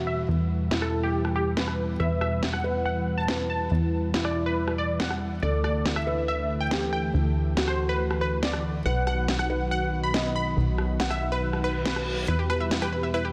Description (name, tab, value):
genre	uplifting trance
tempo	140 BPM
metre	4/4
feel	straight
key	E minor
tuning	A4 = 443 Hz
part	felt-muted upright piano	second line	0.0-12.2 s	E4 to F#5	-35 LUFS	equal	dub echo
part	lush unison pad	sustained chords	0.0-13.3 s	B2 to B4	-33 LUFS	equal	chorus, phaser
part	plucky analog bass	bass	0.0-13.3 s	B1 to E2	-31 LUFS	equal	none
part	supersaw stab	melody	0.1-13.3 s	G4 to B5	-33 LUFS	equal	low-pass filter, delay
part	electronic snare drum and rim click	drums	0.7-12.9 s	none	-33 LUFS	equal	low-pass filter on hats, low-pass filter on snare, low-pass filter on cymbals, low-pass filter on room
part	reverse cymbal	sound effects	11.6-12.3 s	none	-40 LUFS	equal	none
part	analog pluck	arpeggios	12.3-13.3 s	E4 to E5	-35 LUFS	equal	chorus, dub echo
room	light reverb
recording	dense, heavily limited modern master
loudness	-26 LUFS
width	mono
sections	0.0-13.3 A section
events	filter sweep on analog synth pad 0.0-13.3; reverse cymbal 11.6-12.3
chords	0.0 Em; 5.4 Dsus2; 8.9 B; 12.3 Em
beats	| 0.28 0.71 1.14 1.57 | 2.00 2.43 2.85 3.28 | 3.71 4.14 4.57 5.00 | 5.43 5.86 6.28 6.71 | 7.14 7.57 8.00 8.43 | 8.86 9.28 9.71 10.14 | 10.57 11.00 11.43 11.86 | 12.28 12.71 13.14